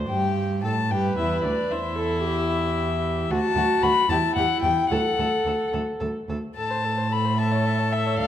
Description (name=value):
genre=quick classical-period movement for string quartet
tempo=75 BPM (dotted quarters)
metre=6/8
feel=rubato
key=unclear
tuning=A4 = 440 Hz
part: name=warm viola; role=accompaniment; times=0.0-8.3 s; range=E4 to C5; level=-27 LUFS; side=right 2 dB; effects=none
part: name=rich violin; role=melody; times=0.1-8.3 s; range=D5 to B5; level=-25 LUFS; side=left 6 dB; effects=none
part: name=warm violin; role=second line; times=0.1-8.3 s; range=D4 to E5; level=-32 LUFS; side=left 2 dB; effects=none
part: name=rich cello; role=bass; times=0.1-8.3 s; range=D2 to A2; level=-26 LUFS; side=right 2 dB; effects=none
room=moderate recital hall reverb, RT60 1.6 s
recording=dark, warm production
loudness=-21 LUFS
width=side -10 dB against mid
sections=0.1-8.3 A section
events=none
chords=0.1 Gsus2; 0.9 Em; 3.3 D; 4.1 Em; 4.9 D; 6.6 Am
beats=| 0.09 0.91 | 1.71 2.51 | 3.31 4.11 | 4.92 5.74 | 6.57 7.39 | 8.19